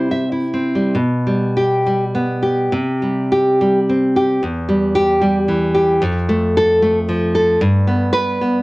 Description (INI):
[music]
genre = romantic piece for solo classical guitar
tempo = 92-118 BPM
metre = 3/4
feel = rubato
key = unclear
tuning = A4 = 440 Hz
[part]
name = nylon-string guitar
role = solo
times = 0.0-8.6 s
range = E2 to E5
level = -14 LUFS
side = equal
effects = cassette tape
[sound]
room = wet small room reverb, RT60 0.6 s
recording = home recording on cassette, nothing above 10.8 kHz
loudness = -14 LUFS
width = side -21 dB against mid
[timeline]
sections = 1.0-8.6 A section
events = none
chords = 0.0 C; 1.0 G/B; 2.7 C5; 4.4 Em; 6.0 F; 7.6 G